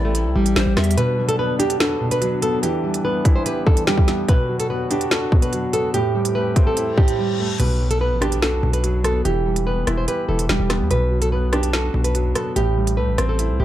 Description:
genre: hip hop, drill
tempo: 145 BPM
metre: 4/4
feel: half-time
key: B phrygian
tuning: A4 = 440 Hz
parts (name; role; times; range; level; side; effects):
- nylon-string guitar; melody; 0.0-13.6 s; G3 to C5; -22 LUFS; right 1 dB; low-pass filter, digital delay
- breathy polished pan flute; second line; 0.0-1.0 s; C5 to E5; -34 LUFS; left 4 dB; digital delay
- mellow French horn section; sustained chords; 0.0-7.6 s; C3 to G4; -29 LUFS; left 1 dB; none
- distorted 808-style bass; bass; 0.0-1.0, 7.6-13.6 s; E1 to E2; -21 LUFS; equal; distortion
- drill drum kit; drums; 0.1-13.5 s; crash cymbal, hi-hat, kick drum, rim click, snare drum; -20 LUFS; equal; none
- dark concert grand piano; accompaniment; 1.0-13.6 s; A2 to G4; -23 LUFS; equal; low-pass filter
- reverse cymbal; sound effects; 6.9-7.6 s; none; -31 LUFS; left 4 dB; none
room: studio ambience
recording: dark, warm production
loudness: -17 LUFS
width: side -13 dB against mid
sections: 1.0-7.6 A section; 7.6-13.6 B section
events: reverse cymbal 6.9-7.6; break 7.2-7.6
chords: 0.0 Am7; 1.0 Bm; 2.6 Em; 4.3 Bm; 5.9 Am7; 7.6 Bm; 9.3 Em; 10.9 Bm; 12.6 Am7

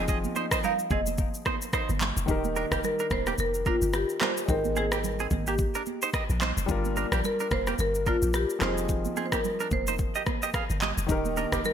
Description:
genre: afrobeats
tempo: 109 BPM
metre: 4/4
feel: swing 58% on 16ths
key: Eb major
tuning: A4 = 440 Hz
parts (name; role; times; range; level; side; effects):
- marimba with medium mallets; melody; 0.0-11.7 s; F4 to F5; -30 LUFS; left 1 dB; ping-pong delay
- warm grand piano; accompaniment; 0.0-11.7 s; Eb3 to G5; -34 LUFS; left 2 dB; none
- direct-recorded clean electric guitar; riff; 0.0-11.6 s; Bb3 to F5; -33 LUFS; right 5 dB; wide subtle chorus, ping-pong delay
- warm 808-style bass; bass; 0.0-11.6 s; Eb1 to Bb1; -31 LUFS; equal; none
- afro-pop drum kit; drums; 0.1-11.7 s; handclaps, kick drum, rim click, shaker; -30 LUFS; equal; gated reverb
- congas; percussion; 0.2-11.7 s; none; -37 LUFS; right 11 dB; none
room: moderate plate reverb, RT60 1.6 s, small room ambience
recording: bright 1980s-style digital production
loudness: -25 LUFS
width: side -9 dB against mid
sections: 0.0-2.3 A section; 2.3-11.7 B section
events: none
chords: 0.0 Fm7; 2.3 Eb; 4.5 Abmaj7; 6.7 Gm7; 8.6 Fm7; 11.1 Eb

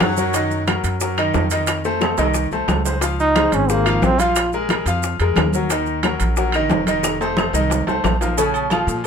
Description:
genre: latin, salsa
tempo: 179 BPM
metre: 4/4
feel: straight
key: unclear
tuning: A4 = 440 Hz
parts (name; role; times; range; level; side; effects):
- bright saxophone section; second line; 0.0-0.7 s; Gb3; -24 LUFS; right 1 dB; none
- bright concert grand piano; accompaniment; 0.0-9.0 s; Db3 to F5; -21 LUFS; left 2 dB; none
- upright bass; bass; 0.0-9.1 s; F1 to Bb2; -22 LUFS; equal; none
- bongos and cowbell; percussion; 0.0-9.0 s; none; -26 LUFS; left 5 dB; none
- claves; percussion; 0.0-8.9 s; none; -30 LUFS; left 5 dB; none
- congas; percussion; 0.0-9.1 s; none; -26 LUFS; right 1 dB; none
- maracas; percussion; 0.0-9.1 s; none; -30 LUFS; right 8 dB; none
- timbales and agogo bells; percussion; 0.0-9.1 s; none; -25 LUFS; right 7 dB; none
- bright trombone; melody; 3.2-4.5 s; Bb3 to F4; -18 LUFS; right 2 dB; none
room: moderate studio reverb, RT60 0.5 s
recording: minimal, uncompressed stereo recording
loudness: -16 LUFS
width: side -7 dB against mid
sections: 0.0-8.4 A section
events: drum fill 2.0-3.0, 7.0-8.4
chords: 0.3 Ebmadd9/Gb; 1.7 F7; 3.0 Dbmaj7; 4.4 Bb5; 5.7 Ebm; 7.0 F7; 8.4 Bbm

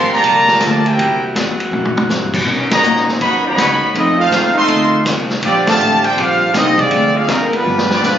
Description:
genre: jazz, big band swing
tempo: 162 BPM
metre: 4/4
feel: swing 65% on 8ths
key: Bb major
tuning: A4 = 439 Hz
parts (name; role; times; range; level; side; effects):
- clear trumpet section; melody; 0.0-8.2 s; G3 to C6; -13 LUFS; equal; none
- clear trombone section; second line; 0.0-8.2 s; D3 to G4; -20 LUFS; right 2 dB; none
- vintage hollow-body jazz guitar; accompaniment; 0.0-8.2 s; F2 to A4; -25 LUFS; left 6 dB; none
- mellow saxophone section; sustained chords; 0.0-8.2 s; C#3 to G4; -26 LUFS; left 1 dB; none
- upright bass; bass; 0.0-8.2 s; F1 to B2; -22 LUFS; equal; none
- vintage drum kit; drums; 0.2-8.1 s; crash cymbal, hi-hat, kick drum, ride cymbal, snare drum, toms; -19 LUFS; equal; none
room: moderate large studio reverb, RT60 1.2 s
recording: recorded on a phone in the room, club reverb, compression, nothing above 7.5 kHz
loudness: -12 LUFS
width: side -10 dB against mid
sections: 0.0-8.2 A section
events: drum fill 1.7-2.1, 7.7-8.0; band accent 2.6, 5.6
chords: 0.0 Gm9; 1.0 C7#11; 2.5 Bmaj9; 3.9 F7; 5.4 Bb69; 6.9 Dm7b5; 7.7 G7

